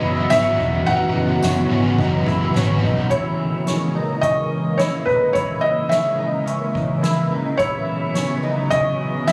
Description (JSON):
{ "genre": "dream pop", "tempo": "107 BPM", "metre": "4/4", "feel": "straight", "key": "C# dorian", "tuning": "A4 = 440 Hz", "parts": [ { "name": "felt-muted upright piano", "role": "melody", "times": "0.0-9.3 s", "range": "B4 to F#5", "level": "-24 LUFS", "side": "equal", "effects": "delay" }, { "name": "overdriven semi-hollow guitar", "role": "accompaniment", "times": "0.0-3.6 s", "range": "F#2 to F#4", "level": "-27 LUFS", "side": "equal", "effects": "harmonic tremolo, analog chorus" }, { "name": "soft string machine", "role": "sustained chords", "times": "0.0-9.3 s", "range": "C#3 to D#5", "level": "-26 LUFS", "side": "equal", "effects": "phaser, ensemble chorus" }, { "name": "clean electric guitar", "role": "arpeggios", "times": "0.0-9.3 s", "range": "C#4 to E4", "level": "-30 LUFS", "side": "equal", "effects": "ensemble chorus, delay" }, { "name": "vintage muted fingered electric bass", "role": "bass", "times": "0.0-3.1 s", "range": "E1 to B1", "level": "-25 LUFS", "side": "equal", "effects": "none" }, { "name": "soft-mallet drum kit", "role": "drums", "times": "0.3-9.3 s", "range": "hi-hat, kick drum, ride cymbal, snare drum, tambourine, toms", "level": "-29 LUFS", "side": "equal", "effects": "none" } ], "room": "moderate huge ambient reverb, RT60 5.0 s", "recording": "recorded on a phone in the room, club reverb", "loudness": "-20 LUFS", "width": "mono", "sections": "0.0-3.1 A section; 3.1-9.3 B section", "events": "drum fill 2.5-3.1", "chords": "0.0 F#7sus4; 3.1 C#m69; 7.6 F#7sus4" }